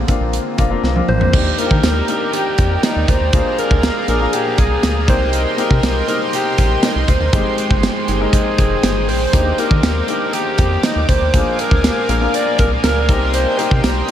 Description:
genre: 1980s-style pop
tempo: 120 BPM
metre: 4/4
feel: straight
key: Eb major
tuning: A4 = 440 Hz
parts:
  - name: warm grand piano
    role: accompaniment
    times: 0.0-14.1 s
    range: Ab3 to Bb4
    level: -23 LUFS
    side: left 5 dB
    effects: none
  - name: chorused pulse-width pad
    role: sustained chords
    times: 0.0-14.1 s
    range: D3 to D6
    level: -23 LUFS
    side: equal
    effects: none
  - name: rubbery square bass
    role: bass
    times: 0.0-14.0 s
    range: F1 to Eb3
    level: -19 LUFS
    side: equal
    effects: none
  - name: modern studio drum kit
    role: drums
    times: 0.1-14.1 s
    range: crash cymbal, hi-hat, kick drum, snare drum, tambourine, toms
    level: -18 LUFS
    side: equal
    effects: none
  - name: raspy alto saxophone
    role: melody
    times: 1.1-14.1 s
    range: Eb4 to D5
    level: -20 LUFS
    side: equal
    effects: tape echo
  - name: high-gain distorted guitar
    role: accompaniment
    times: 1.3-14.1 s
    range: Ab2 to Eb4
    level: -27 LUFS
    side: right 5 dB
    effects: distortion, analog chorus
room: moderate huge ambient reverb, RT60 7.9 s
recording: dreamy mix soaked in reverb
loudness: -13 LUFS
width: side -10 dB against mid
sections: 0.0-1.3 A section; 1.3-14.1 B section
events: drum fill 0.8-1.3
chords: 0.0 Bbadd9; 1.3 Ebmaj7; 3.3 Bb7; 5.1 Cm7; 7.3 Abmaj7; 9.3 Ebmaj7; 11.3 Bb7; 13.1 Cm7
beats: 0.33 0.83 | 1.33 1.83 2.33 2.83 | 3.33 3.83 4.33 4.83 | 5.33 5.83 6.33 6.83 | 7.33 7.83 8.33 8.83 | 9.33 9.83 10.33 10.83 | 11.33 11.83 12.33 12.83 | 13.33 13.83

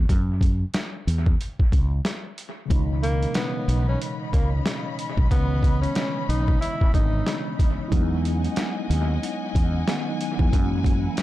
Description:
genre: hip hop, boom-bap hip-hop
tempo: 92 BPM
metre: 4/4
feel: swing 59% on 16ths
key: C# dorian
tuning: A4 = 438 Hz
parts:
  - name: mellow fretless electric bass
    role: bass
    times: 0.0-11.1 s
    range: G#1 to F#2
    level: -23 LUFS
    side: equal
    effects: none
  - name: trip hop sampler-style drum kit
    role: drums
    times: 0.1-11.2 s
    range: hi-hat, kick drum, snare drum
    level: -23 LUFS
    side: equal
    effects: none
  - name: mellow tine electric piano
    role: accompaniment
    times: 2.7-11.2 s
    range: B2 to D#5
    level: -29 LUFS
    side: equal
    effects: medium stereo tremolo, high-pass filter, low-pass filter, dub echo
  - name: warm studio string section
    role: sustained chords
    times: 2.7-11.2 s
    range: C#4 to B5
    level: -34 LUFS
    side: left 3 dB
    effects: high-pass filter, low-pass filter
  - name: breathy tenor saxophone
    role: melody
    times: 3.0-7.4 s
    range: A#3 to E4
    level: -31 LUFS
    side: equal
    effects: high-pass filter, low-pass filter, dub echo
room: little or no reverb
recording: echo-heavy mix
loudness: -21 LUFS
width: side -15 dB against mid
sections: 0.0-11.2 A section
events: break 0.0-2.7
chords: 0.1 F#5; 2.7 C#m9; 7.9 Emaj9; 10.5 F#9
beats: | 0.09 0.74 1.40 2.05 | 2.70 3.35 4.00 4.66 | 5.31 5.96 6.61 7.27 | 7.92 8.57 9.22 9.88 | 10.53 11.18

